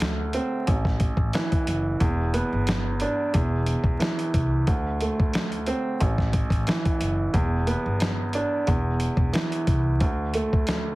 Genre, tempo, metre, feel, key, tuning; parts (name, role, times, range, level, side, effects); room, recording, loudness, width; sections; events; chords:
hip hop, boom-bap hip-hop; 90 BPM; 4/4; swing 54% on 16ths; E minor; A4 = 438 Hz
warm upright piano; accompaniment; 0.0-10.9 s; A1 to D4; -26 LUFS; right 2 dB; cassette tape, high-pass filter, low-pass filter
upright bass; bass; 0.0-10.9 s; E1 to D2; -27 LUFS; equal
dusty soul sampler-style drum kit; drums; 0.0-10.8 s; hi-hat, kick drum, snare drum; -25 LUFS; equal
little or no reverb; heavily compressed radio sound, vinyl crackle; -22 LUFS; side -20 dB against mid
0.0-10.9 A section
0.0 D5; 0.7 A5; 2.0 Em7; 3.3 C/E; 4.7 D5; 6.0 A5; 7.3 Em7; 8.7 C/E; 10.0 D5